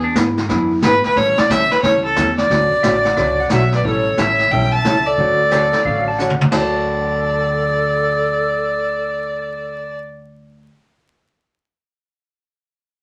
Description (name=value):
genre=country, western swing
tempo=179 BPM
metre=4/4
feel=swing 64% on 8ths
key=D major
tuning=A4 = 438 Hz
part: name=clean lap steel guitar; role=second line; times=0.0-0.8, 2.8-10.0 s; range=D4 to A5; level=-27 LUFS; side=equal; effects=none
part: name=hollow-body jazz guitar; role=accompaniment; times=0.0-10.7 s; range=D3 to A4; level=-25 LUFS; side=equal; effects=none
part: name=upright bass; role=bass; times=0.0-10.7 s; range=A1 to A2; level=-26 LUFS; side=equal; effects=none
part: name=vintage brush drum kit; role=drums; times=0.2-6.8 s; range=brushed snare drum, crash cymbal, hi-hat, kick drum, snare drum, toms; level=-24 LUFS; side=equal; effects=none
part: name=clear fiddle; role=melody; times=0.8-10.0 s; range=A4 to A5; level=-19 LUFS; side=equal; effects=none
part: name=mellow clarinet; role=second line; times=3.5-10.0 s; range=A4 to E5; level=-28 LUFS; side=equal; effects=none
room=wet club reverb, RT60 0.5 s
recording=vinyl crackle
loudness=-17 LUFS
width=mono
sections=0.0-3.8 A section; 3.8-6.5 B section; 6.5-9.2 C section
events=drum fill 6.2-6.5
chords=0.0 E7; 1.2 A7; 2.5 Dmaj7; 3.8 A7; 5.2 Dmaj7; 6.5 D